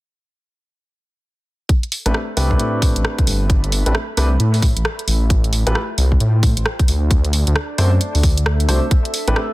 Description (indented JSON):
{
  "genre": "UK garage, two-step garage",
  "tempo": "133 BPM",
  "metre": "4/4",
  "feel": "swing 62% on 16ths",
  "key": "A minor",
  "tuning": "A4 = 440 Hz",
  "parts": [
    { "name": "electronic kick drum", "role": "drums", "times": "1.7-9.0 s", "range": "none", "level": "-16 LUFS", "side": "equal", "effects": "none" },
    { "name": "garage drum kit", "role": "drums", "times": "1.7-9.5 s", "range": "hi-hat, rim click", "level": "-23 LUFS", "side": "right 1 dB", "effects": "none" },
    { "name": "warbly tape-like pad", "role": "texture", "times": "3.1-9.5 s", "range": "D4 to B5", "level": "-31 LUFS", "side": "right 2 dB", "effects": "chorus, built-in reverb, sidechain pumping" },
    { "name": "dark baby grand piano", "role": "stabs", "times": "2.1-9.4 s", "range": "A3 to C5", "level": "-23 LUFS", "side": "equal", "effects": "dub echo" },
    { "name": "dark detuned saw bass", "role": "bass", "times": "2.1-9.3 s", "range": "G1 to A2", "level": "-16 LUFS", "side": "equal", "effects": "none" }
  ],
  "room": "digital ambience",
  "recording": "dense, heavily limited modern master",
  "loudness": "-15 LUFS",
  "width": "side -19 dB against mid",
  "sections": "1.7-9.5 A section",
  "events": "fade-in on ambient pad 1.7-9.5",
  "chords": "1.7 Am11; 5.3 Fmaj9#11/A; 6.9 D7; 8.9 Am11",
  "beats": "| 1.69 2.15 2.60 3.05 | 3.50 3.95 4.40 4.85 | 5.30 5.75 6.21 6.66 | 7.11 7.56 8.01 8.46 | 8.91 9.36"
}